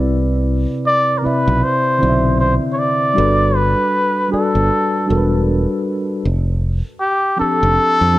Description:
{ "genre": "R&B, neo-soul", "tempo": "78 BPM", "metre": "4/4", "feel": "swing 57% on 16ths", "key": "unclear", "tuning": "A4 = 440 Hz", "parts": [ { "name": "mellow tine electric piano", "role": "accompaniment", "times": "0.0-8.2 s", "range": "C3 to E5", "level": "-19 LUFS", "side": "equal", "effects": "slow stereo tremolo" }, { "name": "fingered electric bass", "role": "bass", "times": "0.0-8.2 s", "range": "E1 to F2", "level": "-17 LUFS", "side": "equal", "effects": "none" }, { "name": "trumpet with cup mute", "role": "melody", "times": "0.9-8.2 s", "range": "G4 to D5", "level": "-16 LUFS", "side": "equal", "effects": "slapback echo" } ], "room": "light reverb", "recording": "dark, warm production", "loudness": "-14 LUFS", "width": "side -16 dB against mid", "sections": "0.0-8.2 A section", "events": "none", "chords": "0.0 Cmaj9; 3.2 Gmaj9; 6.2 F6" }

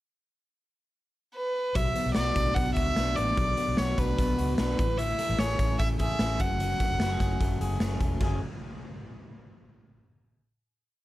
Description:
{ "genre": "jangly indie pop", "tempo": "149 BPM", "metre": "4/4", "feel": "straight", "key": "F# minor", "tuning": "A4 = 444 Hz", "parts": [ { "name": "warm violin", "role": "melody", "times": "1.4-7.8 s", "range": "B4 to F#5", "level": "-30 LUFS", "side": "right 1 dB", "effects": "plate reverb" }, { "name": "electric guitar through a small old amp", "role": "arpeggios", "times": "1.8-8.4 s", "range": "E3 to G#4", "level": "-33 LUFS", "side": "left 3 dB", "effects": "none" }, { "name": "vintage muted fingered electric bass", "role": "bass", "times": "1.8-8.4 s", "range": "E1 to C#2", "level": "-30 LUFS", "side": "equal", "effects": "none" }, { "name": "raw garage drum kit", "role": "drums", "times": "1.8-8.3 s", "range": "crash cymbal, hi-hat, kick drum, snare drum", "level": "-30 LUFS", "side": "equal", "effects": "none" } ], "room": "moderate studio reverb, RT60 0.6 s", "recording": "none", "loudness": "-25 LUFS", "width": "side -16 dB against mid", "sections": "0.1-1.8 pickup bar; 1.8-8.2 verse; 8.2-9.8 final chord", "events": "none", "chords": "0.1 N.C.; 1.8 Bm; 4.8 Amaj7; 6.4 F#madd9" }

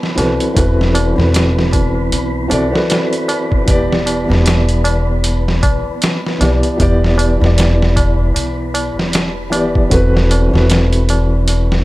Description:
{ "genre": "trip hop", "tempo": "77 BPM", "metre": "4/4", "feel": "swing 58% on 16ths", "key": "E minor", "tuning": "A4 = 441 Hz", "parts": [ { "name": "felt-muted upright piano", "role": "accompaniment", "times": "0.0-11.8 s", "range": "E3 to D5", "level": "-17 LUFS", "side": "equal", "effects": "tremolo, tape echo" }, { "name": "trip hop sampler-style drum kit", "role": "drums", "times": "0.0-11.8 s", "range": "hi-hat, kick drum, snare drum", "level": "-17 LUFS", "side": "equal", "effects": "none" }, { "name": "wind-like tuned noise texture", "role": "texture", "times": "0.0-11.8 s", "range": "B3 to B4", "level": "-26 LUFS", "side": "right 1 dB", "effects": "built-in reverb" }, { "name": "upright bass", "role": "bass", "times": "0.2-11.8 s", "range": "E1 to B1", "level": "-15 LUFS", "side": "equal", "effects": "tube saturation" }, { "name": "tabla", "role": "percussion", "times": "0.2-11.7 s", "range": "none", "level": "-25 LUFS", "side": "equal", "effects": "none" } ], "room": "little or no reverb", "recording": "none", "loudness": "-12 LUFS", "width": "side -18 dB against mid", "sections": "0.0-11.8 A section", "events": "none", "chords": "0.0 D13/E; 3.7 Em7; 9.9 Am69/E" }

